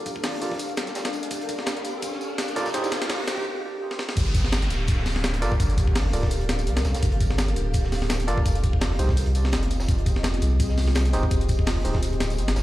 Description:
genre	drum and bass, jungle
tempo	168 BPM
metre	4/4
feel	swing 55% on 16ths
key	G minor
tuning	A4 = 440 Hz
part	soft dub sub bass	bass	0.0-12.6 s	D1 to C2	-24 LUFS	equal	high-pass filter
part	riser and downlifter	sound effects	0.1-7.0 s	none	-35 LUFS	equal	none
part	breakbeat sampler-style drum kit	drums	0.1-12.6 s	hi-hat, kick drum, snare drum	-25 LUFS	equal	high-pass filter on hats, high-pass filter on kick, high-pass filter on snare, high-pass filter on room
part	crunchy breakbeat drum kit	drums	0.1-12.6 s	hi-hat, snare drum, tambourine	-38 LUFS	right 1 dB	high-pass filter on hats, high-pass filter on snare, high-pass filter on perc, high-pass filter on room
part	overdriven tine electric piano	stabs	0.4-2.9, 5.4-11.9 s	Eb4 to D5	-33 LUFS	right 2 dB	low-pass filter, dub echo
room	light reverb, small room ambience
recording	played on a big sound system in a bare room, large studio reverb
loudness	-22 LUFS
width	side -15 dB against mid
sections	0.0-4.2 A section; 4.2-12.6 B section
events	build-up 0.0-4.2; filter sweep on tine electric piano 0.0-4.2; riser 0.1-3.5; break 3.5-4.2; drum fill 3.9; drop 4.2-12.6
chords	0.0 Gm9; 2.7 Fm9; 4.2 Gm9; 8.5 Fm9; 12.0 Dm9

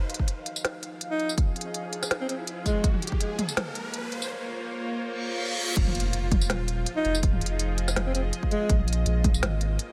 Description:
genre	half-time drum and bass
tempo	164 BPM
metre	4/4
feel	swing 54% on 16ths, half-time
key	F minor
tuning	A4 = 443 Hz
part	bowed-like drone	sustained chords	0.0-9.9 s	F3 to F5	-37 LUFS	equal	built-in reverb, sidechain pumping
part	riser, reverse cymbal and impact	sound effects	0.0-7.2 s	none	-38 LUFS	equal	none
part	organic electronic drum kit	drums	0.1-9.9 s	crash cymbal, hi-hat, snare drum, tambourine, toms	-34 LUFS	equal	none
part	electronic kick drum	drums	0.2-3.2, 5.8-9.3 s	none	-27 LUFS	equal	none
part	clear alto saxophone	melody	1.1-2.9, 7.0-8.7 s	Ab3 to Eb4	-34 LUFS	equal	tape echo
part	saturated sub bass	bass	5.8-9.8 s	Eb1 to Bb1	-29 LUFS	equal	none
room	light reverb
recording	none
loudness	-27 LUFS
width	mono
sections	0.0-5.8 A section; 5.8-9.9 B section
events	build-up 0.0-5.8; riser 0.0-4.3; break 4.3-5.8; reverse cymbal 5.1-5.8; drop 5.8-9.9; impact 5.8-7.2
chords	0.0 Fm7; 2.8 Bbmadd9; 5.8 Fm7; 8.7 Bbmadd9

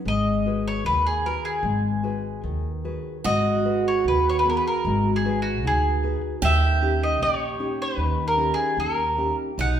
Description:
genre	fado-style ballad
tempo	75 BPM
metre	2/4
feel	rubato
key	G# minor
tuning	A4 = 439 Hz
part	nylon-string guitar	accompaniment	0.0-9.8 s	B2 to B4	-28 LUFS	left 3 dB	none
part	bowl-back mandolin	melody	0.1-9.8 s	F#4 to F#5	-24 LUFS	left 1 dB	none
part	upright bass	bass	0.1-9.8 s	G#1 to D#2	-26 LUFS	equal	none
part	picked twelve-string acoustic guitar	second line	3.2-9.8 s	D#4 to G4	-27 LUFS	right 6 dB	none
room	wet large studio reverb, RT60 1.2 s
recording	band playing live in one room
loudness	-21 LUFS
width	side -9 dB against mid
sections	0.0-3.2 A section; 3.2-9.8 A section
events	none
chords	0.1 G#m7; 6.4 D#7

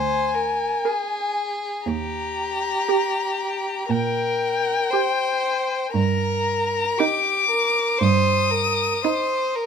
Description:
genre	classical, slow romantic movement for string quartet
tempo	59 BPM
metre	4/4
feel	rubato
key	Eb major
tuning	A4 = 440 Hz
part	warm violin	melody	0.0-9.6 s	G5 to Eb6	-23 LUFS	left 5 dB	none
part	rich violin	second line	0.0-9.7 s	G4 to C5	-24 LUFS	equal	none
part	rich cello	bass	0.0-8.8 s	D2 to Bb2	-24 LUFS	right 5 dB	none
part	rich viola	accompaniment	0.8-9.7 s	Eb4 to Bb4	-24 LUFS	right 8 dB	none
room	light reverb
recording	minimal, uncompressed stereo recording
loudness	-20 LUFS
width	side -6 dB against mid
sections	0.0-9.7 A section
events	none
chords	0.0 Bb7/D; 1.9 Eb; 5.9 Eb/G

